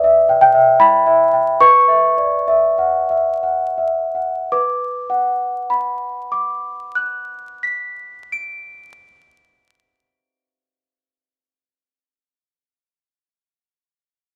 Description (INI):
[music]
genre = classical, lullaby for celesta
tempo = 52-82 BPM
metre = 3/4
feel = rubato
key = B minor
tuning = A4 = 439 Hz
[part]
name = celesta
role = solo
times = 0.0-13.6 s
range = B4 to D7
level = -16 LUFS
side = equal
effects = none
[sound]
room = wet studio reverb, RT60 0.7 s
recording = vinyl crackle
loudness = -16 LUFS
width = mono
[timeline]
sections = 0.0-4.5 A section; 4.5-11.3 B section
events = slowing down 0.0-4.5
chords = 0.0 Em/B; 1.6 F#5/B; 4.5 Bm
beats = 0.04 0.79 | 1.60 2.47 3.42 | 4.51 5.64 6.77 | 7.91 9.03 10.17